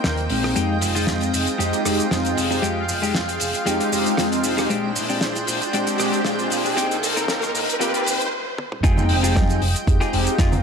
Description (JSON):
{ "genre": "nu-disco, nu disco", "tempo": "116 BPM", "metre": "4/4", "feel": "straight", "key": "F dorian", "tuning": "A4 = 440 Hz", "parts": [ { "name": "lush unison pad", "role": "sustained chords", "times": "0.0-10.6 s", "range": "Ab3 to G5", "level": "-27 LUFS", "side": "right 1 dB", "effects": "chorus, vintage 12-bit sampler grit, sidechain pumping" }, { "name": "picked electric bass with an envelope filter", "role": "bass", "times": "0.0-10.6 s", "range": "F1 to Bb2", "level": "-26 LUFS", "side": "equal", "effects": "tube saturation" }, { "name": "damped 70s drum kit", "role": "drums", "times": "0.0-10.6 s", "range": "hi-hat, rim click, shaker, snare drum, toms", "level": "-25 LUFS", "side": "left 1 dB", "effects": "none" }, { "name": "mellow synth brass", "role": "accompaniment", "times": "0.3-10.6 s", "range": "Ab3 to G5", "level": "-24 LUFS", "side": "equal", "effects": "chorus, sidechain pumping, slapback echo" }, { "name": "clean electric guitar", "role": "riff", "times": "0.4-10.5 s", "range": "Ab3 to Bb4", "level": "-26 LUFS", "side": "left 3 dB", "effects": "wide subtle chorus, slapback echo" }, { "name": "riser", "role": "sound effects", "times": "2.9-8.3 s", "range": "none", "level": "-29 LUFS", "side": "right 1 dB", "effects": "none" }, { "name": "electronic kick drum", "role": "drums", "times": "8.8-10.5 s", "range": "none", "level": "-19 LUFS", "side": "equal", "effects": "none" }, { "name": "congas", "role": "percussion", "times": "9.0-10.6 s", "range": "none", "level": "-28 LUFS", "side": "right 4 dB", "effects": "none" } ], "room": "moderate plate reverb, RT60 1.7 s, small room ambience", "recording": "high-pass filter", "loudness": "-18 LUFS", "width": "side -6 dB against mid", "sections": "0.0-8.8 A section; 8.8-10.6 B section", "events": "build-up 0.0-8.8; riser 2.9-8.3; stop 8.3-8.8; drum fill 8.6; drop 8.8-10.6", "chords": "0.0 Eb6; 0.6 Fm9; 4.7 Bb13; 6.8 Eb6; 8.8 Fm9" }